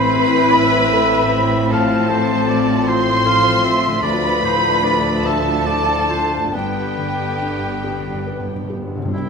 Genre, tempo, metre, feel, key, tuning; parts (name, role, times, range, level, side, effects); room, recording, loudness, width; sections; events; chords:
cinematic, emotional film score for orchestra; 45-52 BPM (dotted quarters); 6/8; rubato; A4 = 440 Hz
muted studio violin section; melody; 0.0-9.3 s; G5 to C6; -22 LUFS; equal
mellow hollow flute section; second line; 0.0-8.7 s; G5 to C6; -22 LUFS; right 1 dB
muted studio violin section; second line; 0.0-9.3 s; E4 to C5; -23 LUFS; left 4 dB
warm oboe; second line; 0.0-9.3 s; E4 to F5; -25 LUFS; right 2 dB
felt-muted upright piano; accompaniment; 0.0-9.3 s; C2 to B4; -24 LUFS; left 3 dB
muted studio viola section; accompaniment; 0.0-9.3 s; A3 to F4; -27 LUFS; right 2 dB
mellow French horn section; sustained chords; 0.0-8.7 s; D3 to D4; -23 LUFS; left 5 dB
concert harp; arpeggios; 0.0-9.3 s; G2 to C5; -31 LUFS; left 8 dB
muted studio cello section; bass; 0.0-9.3 s; D2 to C3; -26 LUFS; right 4 dB
muted studio double bass section; bass; 0.0-9.3 s; G1 to D2; -27 LUFS; right 6 dB
timpani; percussion; 6.5-9.1 s; G2; -28 LUFS; right 1 dB
wet scoring stage reverb, RT60 1.7 s; minimal, uncompressed stereo recording; -15 LUFS; side -5 dB against mid
0.0-9.1 A section
timpani fill 6.5-9.1
0.0 Am; 1.7 F/A; 4.0 Dm; 6.5 G